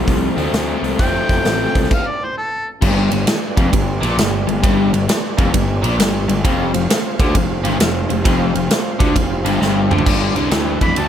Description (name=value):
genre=blues rock power trio and southern rock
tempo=132 BPM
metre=4/4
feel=swing 66% on 8ths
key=G mixolydian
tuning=A4 = 441 Hz
part: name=percussive tonewheel organ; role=sustained chords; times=0.0-11.1 s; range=C4 to F5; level=-28 LUFS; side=right 4 dB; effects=slow rotary speaker, overdrive, chorus vibrato
part: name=biting overdriven guitar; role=riff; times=0.0-11.1 s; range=F2 to C4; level=-19 LUFS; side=left 2 dB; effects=none
part: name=fuzz picked electric bass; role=bass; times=0.0-11.1 s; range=F1 to F2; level=-21 LUFS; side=equal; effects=overdrive
part: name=big rock drum kit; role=drums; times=0.1-11.1 s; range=crash cymbal, hi-hat, kick drum, ride cymbal, snare drum, toms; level=-18 LUFS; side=equal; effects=none
part: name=mellow harmonica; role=melody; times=1.0-2.7, 10.8-11.1 s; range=A4 to B5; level=-21 LUFS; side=equal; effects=overdrive
room=light reverb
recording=none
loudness=-14 LUFS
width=side -9 dB against mid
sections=0.0-2.8 A section; 2.8-10.1 B section; 10.1-11.1 C section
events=stop 1.9-2.8; drum fill 9.6-10.1; harmonica solo 10.1-11.1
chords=0.0 F; 2.8 G; 6.4 F5; 10.1 G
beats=0.08 0.54 | 0.99 1.45 1.91 2.36 | 2.82 3.27 3.73 4.18 | 4.63 5.08 5.54 5.99 | 6.44 6.89 7.35 7.80 | 8.25 8.70 9.15 9.61 | 10.06 10.51 10.96